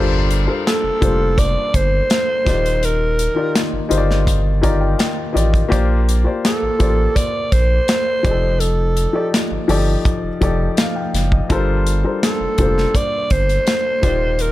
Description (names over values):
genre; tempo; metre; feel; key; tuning
lush 1970s-style soul; 83 BPM; 4/4; straight; G minor; A4 = 440 Hz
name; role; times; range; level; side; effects
warm grand piano; accompaniment; 0.0-14.5 s; Eb3 to Bb5; -21 LUFS; left 4 dB; none
saturated sub bass; bass; 0.0-14.5 s; Eb1 to Bb1; -18 LUFS; equal; none
modern studio drum kit; drums; 0.3-14.5 s; hi-hat, kick drum, snare drum; -20 LUFS; equal; none
breathy alto saxophone; melody; 0.7-14.5 s; A4 to D5; -19 LUFS; right 1 dB; none
room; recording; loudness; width
small room ambience; none; -15 LUFS; side -15 dB against mid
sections
0.0-14.5 A section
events
grand piano fill 4.3-5.7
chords
0.0 Gm11; 2.5 Ebmaj7; 5.7 Bb69; 8.2 F13; 11.5 Gm11